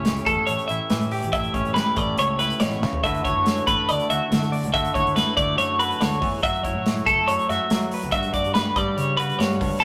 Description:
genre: math rock and midwest emo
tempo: 141 BPM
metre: 4/4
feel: straight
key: G lydian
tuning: A4 = 439 Hz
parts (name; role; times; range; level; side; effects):
- direct-recorded clean electric guitar; accompaniment; 0.0-9.8 s; G2 to D5; -30 LUFS; equal; none
- twelve-string electric guitar; arpeggios; 0.0-9.8 s; A4 to E5; -24 LUFS; equal; vibrato effect
- fuzz fingered electric bass; bass; 0.0-9.8 s; A1 to F#3; -32 LUFS; equal; overdrive
- modern studio drum kit; drums; 0.0-9.7 s; hi-hat, kick drum, snare drum, toms; -29 LUFS; equal; none
room: moderate stone room reverb, RT60 1.3 s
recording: rough rehearsal-room recording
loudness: -22 LUFS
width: mono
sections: 0.0-9.8 A section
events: drum fill 2.8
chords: 0.0 A9; 3.0 D69; 6.4 F#m7; 8.1 Gmaj7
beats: 0.05 0.48 0.90 | 1.33 1.75 2.18 2.60 | 3.03 3.46 3.88 4.31 | 4.73 5.16 5.58 6.01 | 6.43 6.86 7.28 7.70 | 8.13 8.55 8.97 9.40 | 9.82

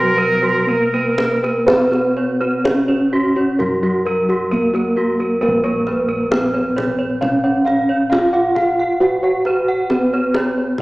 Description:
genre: Javanese gamelan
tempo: 58-67 BPM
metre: 4/4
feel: straight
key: Bb pelog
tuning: A4 = 440 Hz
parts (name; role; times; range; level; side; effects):
- gamelan-type bronze metallophone; melody; 0.0-10.8 s; Gb3 to Gb4; -18 LUFS; equal; none
- bright alto recorder; second line; 0.0-1.4 s; Bb4; -18 LUFS; right 2 dB; none
- gamelan-type bossed gongs; arpeggios; 0.0-10.6 s; Gb4 to Gb5; -22 LUFS; equal; none
- gamelan-type bronze metallophone; arpeggios; 0.0-10.8 s; Gb4 to Gb5; -22 LUFS; right 1 dB; none
- gamelan-type bossed gongs; bass; 0.0-10.8 s; Bb1 to Cb5+35c; -23 LUFS; equal; none
- kendang; percussion; 1.2-10.8 s; none; -24 LUFS; equal; none
room: wet recital hall reverb, RT60 1.5 s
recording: small speaker sound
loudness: -14 LUFS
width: side -20 dB against mid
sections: 0.0-5.4 A section; 5.4-10.8 B section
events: none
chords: none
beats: 0.68 | 1.67 2.65 3.59 4.52 | 5.43 6.32 7.22 8.11 | 9.01 9.90 10.80

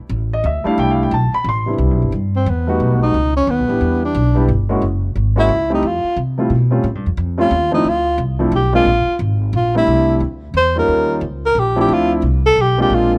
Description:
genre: jazz, small-group swing and bop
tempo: 178 BPM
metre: 3/4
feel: swing 63% on 8ths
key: C major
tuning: A4 = 440 Hz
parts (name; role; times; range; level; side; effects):
- upright bass; bass; 0.1-13.2 s; F#1 to C3; -20 LUFS; equal; none
- dark baby grand piano; accompaniment; 0.3-13.2 s; C3 to C6; -21 LUFS; equal; none
- breathy tenor saxophone; melody; 2.4-13.1 s; B3 to C5; -18 LUFS; equal; none
room: studio ambience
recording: dry, close 1970s-style studio recording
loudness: -16 LUFS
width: mono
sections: 0.0-1.8 A section; 1.8-9.9 A section; 9.9-13.2 A section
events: tenor saxophone solo 1.8-13.2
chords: 0.0 C69; 1.8 Cmaj9; 2.8 B7b13; 3.8 Em7; 4.8 F#7sus2; 5.8 Fadd9; 6.8 Am7b13; 7.9 Dm7; 8.9 Bb7(no3); 9.9 C69; 10.9 Eb9; 11.9 Dm9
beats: 0.10 0.44 | 0.77 1.11 1.45 | 1.78 2.12 2.46 | 2.80 3.13 3.47 | 3.81 4.14 4.48 | 4.82 5.16 5.49 | 5.83 6.17 6.50 | 6.84 7.18 7.51 | 7.85 8.19 8.52 | 8.86 9.20 9.53 | 9.87 10.21 10.54 | 10.88 11.22 11.55 | 11.89 12.23 12.56 | 12.90

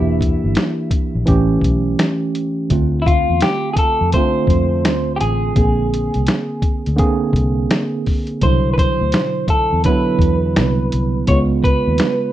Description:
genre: lo-fi hip hop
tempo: 84 BPM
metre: 4/4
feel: swing 63% on 16ths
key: unclear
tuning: A4 = 440 Hz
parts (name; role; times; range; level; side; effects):
- electric guitar through a small old amp; melody; 0.0-12.3 s; E4 to C#5; -20 LUFS; equal; low-pass filter, analog delay, plate reverb
- tine electric piano; accompaniment; 0.0-12.3 s; B2 to Ab4; -19 LUFS; right 3 dB; slow stereo tremolo, low-pass filter
- vintage muted fingered electric bass; bass; 0.0-12.0 s; E1 to F2; -19 LUFS; left 1 dB; none
- lo-fi sampler-style drum kit; drums; 0.2-12.2 s; finger snaps, hi-hat, kick drum, snare drum; -18 LUFS; left 1 dB; vintage 12-bit sampler grit
room: moderate studio reverb, RT60 0.5 s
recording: rough home demo mix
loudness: -14 LUFS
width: side -13 dB against mid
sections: 0.0-12.3 A section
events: none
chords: 0.0 Em7b5; 1.3 A7; 2.7 Dm7; 5.6 Bb9; 8.4 Cmaj9#11; 11.3 C#7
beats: 0.56 1.27 1.99 | 2.70 3.42 4.13 4.85 | 5.56 6.28 6.99 7.70 | 8.42 9.13 9.85 10.56 | 11.28 11.99

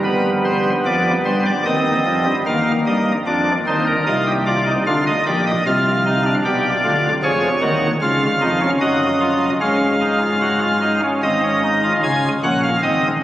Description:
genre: classical, baroque-style 3-part fugue for pipe organ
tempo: 75 BPM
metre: 3/4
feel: straight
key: Db major from 7.2 s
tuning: A4 = 441 Hz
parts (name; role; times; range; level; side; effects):
- pipe organ, cornet; solo; 0.0-13.1 s; Ab1 to Ab5; -15 LUFS; equal; none
room: wet cathedral reverb, RT60 7.0 s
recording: recorded on a phone in the room, club reverb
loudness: -15 LUFS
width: side -14 dB against mid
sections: 0.0-2.5 A section; 2.5-12.0 B section; 12.0-13.2 C section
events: none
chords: 0.1 G; 1.7 Cm/Eb; 2.5 Eb; 4.1 Cmadd9; 4.9 Bb69; 6.4 G/B; 7.2 Db; 8.8 Ebm/Gb; 9.6 Absus4; 11.2 Ab; 12.0 Db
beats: | 0.05 0.86 1.66 | 2.46 3.27 4.07 | 4.86 5.65 6.45 | 7.23 8.02 8.81 | 9.61 10.41 11.23 | 12.03 12.83

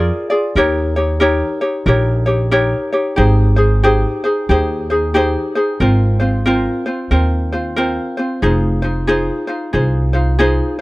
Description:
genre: Hawaiian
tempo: 92 BPM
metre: 4/4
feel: swing 62% on 8ths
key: Ab major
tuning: A4 = 439 Hz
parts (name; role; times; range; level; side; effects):
- ukulele; accompaniment; 0.0-10.8 s; C4 to D5; -16 LUFS; left 1 dB; none
- upright bass; bass; 0.0-10.6 s; F1 to Eb2; -16 LUFS; equal; none
room: small room ambience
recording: dry, close 1970s-style studio recording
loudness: -13 LUFS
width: side -20 dB against mid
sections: 0.0-5.8 A section; 5.8-10.8 B section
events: none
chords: 0.0 Bb7; 0.6 Eb7; 3.2 Abmaj7; 5.8 Ab69; 8.4 Fm7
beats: | 0.56 1.21 1.87 2.52 | 3.18 3.84 4.49 5.15 | 5.80 6.46 7.12 7.77 | 8.43 9.08 9.74 10.39

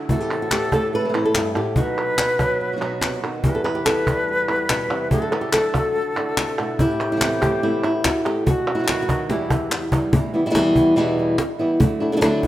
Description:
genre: flamenco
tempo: 143 BPM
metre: 4/4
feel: straight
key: E minor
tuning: A4 = 438 Hz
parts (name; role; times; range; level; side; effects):
- flamenco guitar; melody; 0.0-12.5 s; E2 to D5; -21 LUFS; equal; none
- bright wooden flute; second line; 0.0-9.9 s; E4 to C#5; -25 LUFS; left 1 dB; none
- flamenco guitar; stabs; 0.0-12.5 s; E2 to F#4; -29 LUFS; right 3 dB; none
- cajon; percussion; 0.1-12.5 s; none; -23 LUFS; left 1 dB; none
- palmas hand claps; percussion; 0.3-10.1 s; none; -26 LUFS; equal; none
room: moderate lush hall reverb, RT60 2.6 s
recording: rough home demo mix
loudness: -18 LUFS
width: side -14 dB against mid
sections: 0.0-10.1 A section; 10.1-12.5 B section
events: drum fill 9.3-10.1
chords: 0.1 Amadd9; 1.8 B; 3.4 Em; 5.1 Dadd9; 6.8 Amadd9; 8.5 B; 9.3 Em; 11.8 Dadd9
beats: | 0.10 0.52 0.94 1.35 | 1.77 2.19 2.61 3.03 | 3.44 3.86 4.28 4.70 | 5.12 5.54 5.96 6.38 | 6.79 7.21 7.63 8.05 | 8.47 8.88 9.30 9.72 | 10.14 10.55 10.97 11.39 | 11.80 12.22

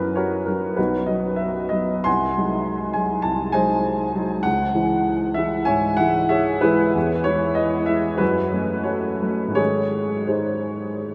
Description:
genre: classical, romantic character piece for solo piano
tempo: 81-103 BPM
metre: 4/4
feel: rubato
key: C# minor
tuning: A4 = 442 Hz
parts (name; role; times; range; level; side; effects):
- warm baby grand piano; solo; 0.0-11.1 s; B1 to B#5; -22 LUFS; equal; none
room: wet huge ambient reverb, RT60 7.6 s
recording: in a vast, echoing space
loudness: -22 LUFS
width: mono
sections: 0.0-11.1 A section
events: none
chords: 0.0 F#7; 0.8 B; 2.1 G#7/B#; 4.5 C#m; 7.0 E; 8.2 F#m; 9.6 G#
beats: 0.18 0.78 1.38 | 2.06 2.67 3.27 3.86 | 4.46 5.07 5.69 6.32 | 6.95 7.58 8.21 8.87 | 9.59 10.31 11.03

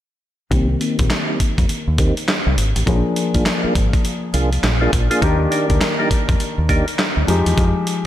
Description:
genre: R&B, new jack swing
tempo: 102 BPM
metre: 4/4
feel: swing 62% on 16ths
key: C minor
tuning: A4 = 440 Hz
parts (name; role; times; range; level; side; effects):
- warm concert grand piano; accompaniment; 0.5-8.1 s; Eb3 to Ab4; -22 LUFS; left 3 dB; low-pass filter
- percussive tonewheel organ; stabs; 0.5-6.9 s; Bb3 to Ab4; -24 LUFS; right 1 dB; overdrive, chorus vibrato, slow rotary speaker, low-pass filter
- deep dub fingered electric bass; bass; 0.5-7.7 s; Ab1 to F2; -19 LUFS; equal; none
- dusty soul sampler-style drum kit; drums; 0.5-8.0 s; handclaps, hi-hat, kick drum, snare drum; -19 LUFS; equal; none
room: light reverb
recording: none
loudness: -15 LUFS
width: side -12 dB against mid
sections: 0.5-8.1 A section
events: filter sweep 0.5-8.1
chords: 0.5 Cm7; 2.9 Bb7; 5.2 Ebmaj7; 7.3 Fm9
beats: | 0.52 1.10 1.69 2.28 | 2.87 3.46 4.05 4.63 | 5.22 5.81 6.40 6.99 | 7.58

